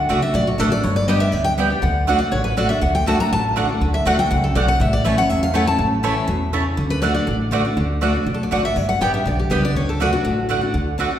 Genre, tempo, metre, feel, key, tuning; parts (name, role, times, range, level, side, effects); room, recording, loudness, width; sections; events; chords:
bluegrass; 242 BPM; 4/4; straight; D major; A4 = 439 Hz
picked steel-string acoustic guitar; melody; 0.0-10.7 s; F#4 to Bb5; -22 LUFS; left 1 dB
picked steel-string acoustic guitar; accompaniment; 0.0-11.2 s; E2 to G4; -22 LUFS; left 1 dB
upright bass; bass; 0.0-11.1 s; G1 to E2; -23 LUFS; equal
mandolin; stabs; 0.1-11.1 s; A3 to A5; -24 LUFS; right 4 dB
wet recital hall reverb, RT60 1.7 s; recorded in a church or concert hall; -16 LUFS; side -10 dB against mid
0.0-7.8 A section; 7.8-11.2 B section
steel-string acoustic guitar solo 0.0-7.8
0.0 D; 0.8 G; 1.8 D; 4.8 A; 6.8 D; 8.8 G; 9.8 D